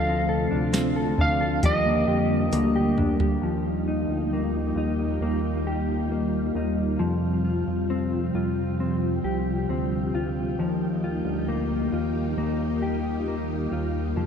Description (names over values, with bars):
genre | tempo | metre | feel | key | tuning
dream pop | 67 BPM | 4/4 | straight | Eb lydian | A4 = 438 Hz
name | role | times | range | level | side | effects
electric slide guitar | melody | 0.0-2.9 s | Eb5 to F5 | -27 LUFS | right 2 dB | tape echo
ensemble organ-string | sustained chords | 0.0-14.3 s | C3 to G4 | -28 LUFS | equal | ensemble chorus
mellow electric guitar | arpeggios | 0.0-14.3 s | F3 to A4 | -27 LUFS | left 3 dB | lush chorus, tape echo
fat analog bass | bass | 0.0-14.3 s | C2 to F2 | -29 LUFS | equal | none
soft vintage rhythm box | drums | 0.7-3.4 s | hi-hat, kick drum, snare drum, tambourine, toms | -26 LUFS | right 1 dB | overdrive
room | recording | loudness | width
moderate lush hall reverb, RT60 2.6 s | none | -23 LUFS | side -7 dB against mid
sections
0.0-3.4 A section; 3.4-14.3 B section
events
drum fill 2.5-3.4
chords
0.0 Dm7; 1.6 Ebmaj9; 7.0 Fsus2; 10.6 Ebadd9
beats
0.74 1.63 2.53 | 3.42 4.32 5.21 6.11 | 7.01 7.90 8.80 9.69 | 10.59 11.48 12.38 13.27 | 14.17